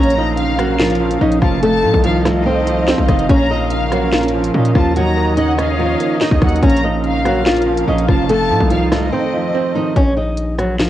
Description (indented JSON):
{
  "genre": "hip hop, drill",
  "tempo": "144 BPM",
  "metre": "4/4",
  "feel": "half-time",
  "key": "Bb harmonic minor",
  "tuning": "A4 = 440 Hz",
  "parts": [
    { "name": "flamenco guitar", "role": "melody", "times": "0.0-10.9 s", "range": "F3 to Eb5", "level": "-18 LUFS", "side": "left 1 dB", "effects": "cassette tape" },
    { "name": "warm studio violin section", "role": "second line", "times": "0.0-9.9 s", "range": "Eb5 to Bb5", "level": "-24 LUFS", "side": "left 2 dB", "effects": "tape echo" },
    { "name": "felt-muted upright piano", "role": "accompaniment", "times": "0.0-10.0 s", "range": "F2 to Eb4", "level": "-20 LUFS", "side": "right 8 dB", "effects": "none" },
    { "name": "muted studio string section", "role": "sustained chords", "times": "0.0-9.9 s", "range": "Db4 to F5", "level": "-23 LUFS", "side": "left 1 dB", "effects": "none" },
    { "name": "distorted 808-style bass", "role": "bass", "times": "0.0-10.9 s", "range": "F1 to Bb2", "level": "-20 LUFS", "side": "left 1 dB", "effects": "distortion" },
    { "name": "drill drum kit", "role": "drums", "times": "0.0-10.9 s", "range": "handclaps, hi-hat, kick drum, rim click, snare drum", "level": "-18 LUFS", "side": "left 1 dB", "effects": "cassette tape" }
  ],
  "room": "little or no reverb",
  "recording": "home recording on cassette",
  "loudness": "-13 LUFS",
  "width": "side -12 dB against mid",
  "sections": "0.0-10.0 A section",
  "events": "break 9.1-10.0",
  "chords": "0.0 Bbm; 1.6 F7; 3.3 Bbm; 5.0 Ebm7; 6.6 Bbm; 8.3 F7; 10.0 Bbm"
}